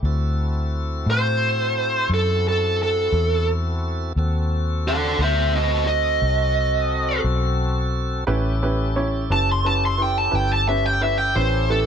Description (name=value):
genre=blues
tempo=58 BPM (dotted quarters)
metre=12/8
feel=straight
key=unclear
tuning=A4 = 440 Hz
part: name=tonewheel organ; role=sustained chords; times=0.0-11.9 s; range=C4 to A4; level=-29 LUFS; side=left 2 dB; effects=slow rotary speaker, overdrive
part: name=vintage muted fingered electric bass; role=bass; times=0.0-11.9 s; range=F#1 to A2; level=-22 LUFS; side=left 1 dB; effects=none
part: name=smooth overdriven lead guitar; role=melody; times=1.1-11.9 s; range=F#4 to C6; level=-21 LUFS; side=right 1 dB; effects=none
part: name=warm upright piano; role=accompaniment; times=8.3-11.9 s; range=C#4 to C#5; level=-26 LUFS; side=right 4 dB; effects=none
room=light reverb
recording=none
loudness=-19 LUFS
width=side -8 dB against mid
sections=0.0-11.9 A section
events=lead electric guitar solo 0.0-11.9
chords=0.0 D7; 4.2 D#dim7; 8.3 A7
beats=| 0.03 1.06 2.10 3.13 | 4.16 5.19 6.22 7.24 | 8.27 9.30 10.33 11.36